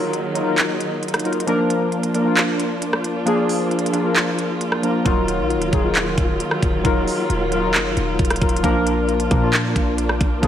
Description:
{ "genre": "hip hop, trap", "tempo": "134 BPM", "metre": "4/4", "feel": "half-time", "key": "Eb harmonic minor", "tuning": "A4 = 440 Hz", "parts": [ { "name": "warbly lo-fi synth keys", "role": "accompaniment", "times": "0.0-10.5 s", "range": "F3 to Bb4", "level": "-20 LUFS", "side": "left 1 dB", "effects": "chorus, low-pass filter" }, { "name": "dark studio string section", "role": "sustained chords", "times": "0.0-10.5 s", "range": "Eb3 to F4", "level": "-25 LUFS", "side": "right 1 dB", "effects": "none" }, { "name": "trap drum kit", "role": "drums", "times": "0.1-10.5 s", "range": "handclaps, hi-hat, kick drum, rim click", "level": "-21 LUFS", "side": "equal", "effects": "vintage 12-bit sampler grit" }, { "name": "warm 808-style bass", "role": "bass", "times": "5.1-10.5 s", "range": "Eb1 to Bb2", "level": "-25 LUFS", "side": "equal", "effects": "none" } ], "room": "light reverb, digital ambience", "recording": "vinyl crackle", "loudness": "-17 LUFS", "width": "side -10 dB against mid", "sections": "0.0-10.5 A section", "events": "break 0.0-5.1", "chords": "0.0 Ebmadd9; 1.5 Bb; 5.1 Ebmadd9; 8.6 Bb" }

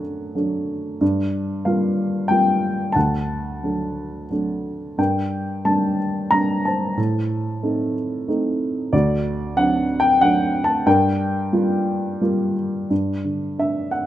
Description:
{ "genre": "classical, lyrical solo piano", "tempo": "92 BPM", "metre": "3/4", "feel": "rubato", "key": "G minor", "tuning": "A4 = 439 Hz", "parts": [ { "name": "dark upright piano", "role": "solo", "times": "0.0-14.1 s", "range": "D2 to Bb5", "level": "-19 LUFS", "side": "equal", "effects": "none" } ], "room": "light reverb", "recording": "close, detailed microphones", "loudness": "-19 LUFS", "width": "side -12 dB against mid", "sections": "0.0-12.9 A section; 12.9-14.1 B section", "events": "none", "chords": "0.0 D/F#; 1.0 Gm7; 3.0 D; 5.0 Gm; 7.0 Adim; 8.9 D7; 10.9 Gm7; 12.9 G5" }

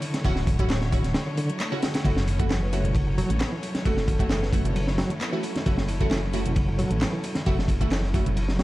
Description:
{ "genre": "breakbeat, breaks", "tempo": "133 BPM", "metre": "4/4", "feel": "straight", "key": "F# minor", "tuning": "A4 = 441 Hz", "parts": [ { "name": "dark chamber string section", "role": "sustained chords", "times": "0.0-8.6 s", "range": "F#3 to C#5", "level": "-36 LUFS", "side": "left 2 dB", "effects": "sidechain pumping" }, { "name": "barky reed electric piano", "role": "riff", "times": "0.0-8.6 s", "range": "C#3 to B3", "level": "-31 LUFS", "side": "equal", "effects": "overdrive, tremolo, tape echo" }, { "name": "crunchy breakbeat drum kit", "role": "drums", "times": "0.0-8.6 s", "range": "kick drum, ride cymbal, snare drum", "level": "-26 LUFS", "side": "equal", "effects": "none" }, { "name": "garage drum kit", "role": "drums", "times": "0.0-8.6 s", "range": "handclaps, hi-hat", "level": "-37 LUFS", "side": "equal", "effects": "none" }, { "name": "orchestra-hit-like synth stab", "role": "stabs", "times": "0.2-8.3 s", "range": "A3 to F#4", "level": "-32 LUFS", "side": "right 2 dB", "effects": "built-in reverb, tape echo" }, { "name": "dark detuned saw bass", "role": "bass", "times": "0.2-8.6 s", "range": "D1 to A1", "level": "-26 LUFS", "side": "equal", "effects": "none" }, { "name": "congas", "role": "percussion", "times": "2.3-8.6 s", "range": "none", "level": "-34 LUFS", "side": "right 2 dB", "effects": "none" }, { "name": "vibraphone with soft mallets", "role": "melody", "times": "2.6-4.9 s", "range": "A4 to C#5", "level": "-35 LUFS", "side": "equal", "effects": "small speaker sound, vintage 12-bit sampler grit, tape echo" } ], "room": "studio reverb", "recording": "dark, warm production, vinyl crackle", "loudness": "-22 LUFS", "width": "side -17 dB against mid", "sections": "0.0-8.6 A section", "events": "break 1.1-2.1", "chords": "0.0 Dmaj9; 2.1 F#m7" }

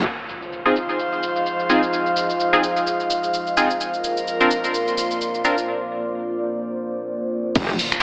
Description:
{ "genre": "bass house", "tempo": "128 BPM", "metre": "4/4", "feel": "swing 56% on 16ths", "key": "F minor", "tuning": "A4 = 439 Hz", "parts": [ { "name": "metallic wobble bass", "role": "bass", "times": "0.0, 7.6-7.8 s", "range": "F1", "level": "-24 LUFS", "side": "equal", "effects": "chorus, overdrive, sidechain pumping" }, { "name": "deep dark ambient pad", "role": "sustained chords", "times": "0.9-8.0 s", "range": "F3 to Eb5", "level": "-30 LUFS", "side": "equal", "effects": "chorus, built-in reverb, vintage 12-bit sampler grit, sidechain pumping" }, { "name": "house drum kit", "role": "drums", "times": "0.1-8.0 s", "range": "crash cymbal, finger snaps, hi-hat, shaker", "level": "-29 LUFS", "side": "equal", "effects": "overdrive, low-pass filter on hats, low-pass filter on perc, low-pass filter on snare, low-pass filter on cymbals, low-pass filter on room" }, { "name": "impact", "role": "sound effects", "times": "0.1-1.9, 7.6-8.0 s", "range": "none", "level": "-40 LUFS", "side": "equal", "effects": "none" }, { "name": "airy breathy pad", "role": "texture", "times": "0.4-8.0 s", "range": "F4 to C6", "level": "-26 LUFS", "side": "equal", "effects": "chorus, sidechain pumping" }, { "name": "band-passed chord stab", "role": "stabs", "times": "0.7-5.6 s", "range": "C4 to Bb4", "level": "-24 LUFS", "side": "equal", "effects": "chorus, sidechain pumping, digital delay" }, { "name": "electronic kick drum", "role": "drums", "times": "7.6-7.7 s", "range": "none", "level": "-21 LUFS", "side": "equal", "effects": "none" } ], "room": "wet plate reverb, RT60 2.1 s", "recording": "AM radio sound", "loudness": "-22 LUFS", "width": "mono", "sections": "0.1-7.6 A section", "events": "impact 0.1-1.9, 7.6-8.0; break 5.7-7.6", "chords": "0.1 Fm7; 3.8 Bbadd9" }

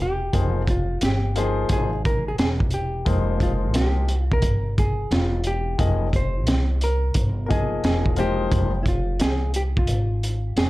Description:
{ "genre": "hip hop, jazz-hop", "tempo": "88 BPM", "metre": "4/4", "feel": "swing 66% on 16ths", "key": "F minor", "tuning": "A4 = 443 Hz", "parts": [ { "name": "hollow-body jazz guitar", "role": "melody", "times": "0.0-10.7 s", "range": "E4 to C5", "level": "-29 LUFS", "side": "equal", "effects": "plate reverb, analog delay" }, { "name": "upright bass", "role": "bass", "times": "0.0-10.7 s", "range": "E1 to C2", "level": "-24 LUFS", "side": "equal", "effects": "none" }, { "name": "warm concert grand piano", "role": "accompaniment", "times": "0.3-8.7 s", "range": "F3 to Eb5", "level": "-27 LUFS", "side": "left 4 dB", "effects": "plate reverb" }, { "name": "crunchy breakbeat drum kit", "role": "drums", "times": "0.3-10.7 s", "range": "hi-hat, kick drum, snare drum", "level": "-23 LUFS", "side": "equal", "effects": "none" } ], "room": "light reverb", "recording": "dark, warm production", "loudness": "-20 LUFS", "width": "side -18 dB against mid", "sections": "0.0-10.7 A section", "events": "kick muted 9.9-10.7", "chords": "0.3 Fm9" }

